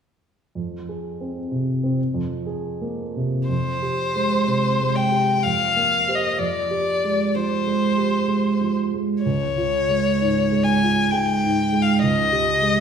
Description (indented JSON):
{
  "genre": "classical, impressionist duo for violin and grand piano",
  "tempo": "63 BPM",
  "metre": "3/4",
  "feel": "uneven beats, rubato",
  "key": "F minor",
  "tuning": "A4 = 440 Hz",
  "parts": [
    { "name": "dark baby grand piano", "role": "accompaniment", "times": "0.6-12.8 s", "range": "Db2 to C5", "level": "-22 LUFS", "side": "right 2 dB", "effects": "none" },
    { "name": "rich violin", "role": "melody", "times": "3.5-12.8 s", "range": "C5 to Ab5", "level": "-21 LUFS", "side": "left 3 dB", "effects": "none" }
  ],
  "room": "wet recital hall reverb, RT60 1.5 s",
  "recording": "recorded in a church or concert hall",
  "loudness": "-19 LUFS",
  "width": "side -7 dB against mid",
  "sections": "0.6-3.5 A section; 3.5-12.8 B section",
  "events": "none",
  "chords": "0.6 Fm; 2.0 Ab69/F; 3.5 Fmadd9; 5.4 F9sus4; 6.4 Fm69; 9.2 Db; 12.0 Dbsus2",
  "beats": "| 0.55 1.51 2.46 | 3.48 4.46 5.44 | 6.40 7.36 8.29 | 9.24 10.19 11.12 | 12.04"
}